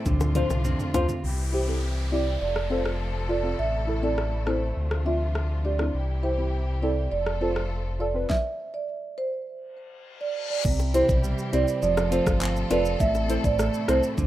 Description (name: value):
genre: dancehall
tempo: 102 BPM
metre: 4/4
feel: straight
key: C major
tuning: A4 = 440 Hz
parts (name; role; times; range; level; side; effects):
- warm studio string section; sustained chords; 0.0-14.3 s; C3 to A4; -36 LUFS; left 2 dB; sidechain pumping
- clean electric guitar; arpeggios; 0.0-1.8, 10.7-14.3 s; A2 to F4; -30 LUFS; right 2 dB; none
- sub bass with octave; bass; 0.1-14.3 s; F1 to D2; -27 LUFS; equal; none
- pop drum kit; drums; 0.1-14.3 s; crash cymbal, handclaps, hi-hat, kick drum, rim click, shaker, snare drum, toms; -28 LUFS; equal; overdrive
- bongos; percussion; 0.2-1.1, 10.8-13.3 s; none; -34 LUFS; left 6 dB; none
- deep mellow chord stab; accompaniment; 0.3-14.0 s; C4 to C5; -28 LUFS; left 1 dB; chorus, sidechain pumping
- downlifter and reverse cymbal; sound effects; 1.2-5.9, 10.1-10.6 s; none; -38 LUFS; left 3 dB; none
- marimba with soft mallets; melody; 1.5-14.1 s; C5 to E5; -28 LUFS; right 4 dB; none
room: digital ambience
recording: rough home demo mix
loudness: -23 LUFS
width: side -14 dB against mid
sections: 0.0-1.2 A section; 1.2-10.6 B section; 10.6-14.3 A section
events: drum fill 0.0-1.2; stop 8.3-10.6; reverse cymbal 10.1-10.6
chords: 0.1 Dm7; 1.2 C; 2.4 F; 3.6 Am; 4.8 Dm7; 5.9 C; 7.1 F; 8.3 N.C.; 10.6 C; 11.8 F; 13.0 Am